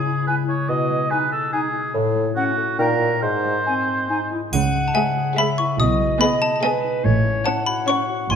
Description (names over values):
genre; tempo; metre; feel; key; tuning
cinematic, playful, whimsical film cue; 142 BPM; 3/4; straight; C# minor; A4 = 442 Hz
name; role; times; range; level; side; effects
warm oboe; second line; 0.0-4.3 s; F#4 to D#5; -23 LUFS; right 2 dB; none
concert harp; arpeggios; 0.0-8.4 s; G#2 to D#5; -25 LUFS; left 6 dB; none
hollow concert flute; second line; 0.3-4.2 s; F#5 to G#5; -29 LUFS; left 3 dB; none
warm clarinet; second line; 0.3-8.4 s; B#3 to G#5; -26 LUFS; right 1 dB; none
mellow bassoon; accompaniment; 0.7-3.6 s; G#2 to B2; -25 LUFS; right 3 dB; none
dark studio double bass section; bass; 4.5-8.4 s; G#1 to C#2; -23 LUFS; right 4 dB; none
warm studio cello section; bass; 4.5-8.4 s; G#2 to C#3; -25 LUFS; right 4 dB; none
triangle; percussion; 4.5-5.3 s; none; -33 LUFS; equal; none
xylophone with plastic mallets; melody; 4.9-8.4 s; G#5 to D#6; -23 LUFS; left 2 dB; none
warm studio violin section; melody; 5.0-8.2 s; D#5 to F#5; -29 LUFS; left 1 dB; none
dark studio violin section; second line; 5.0-8.2 s; G#4 to C#5; -30 LUFS; left 3 dB; none
rich studio viola section; accompaniment; 5.0-8.2 s; G#3 to C#4; -28 LUFS; right 4 dB; none
room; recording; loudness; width
moderate scoring stage reverb, RT60 2.0 s; none; -18 LUFS; side -7 dB against mid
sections
0.0-4.5 A section; 4.5-8.4 A section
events
none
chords
0.0 C#m; 0.7 G#m/B; 1.9 F#m/A; 2.8 D#7(no3)/A#; 3.2 G#; 4.5 C#m; 5.8 G#m/B; 7.0 F#m/A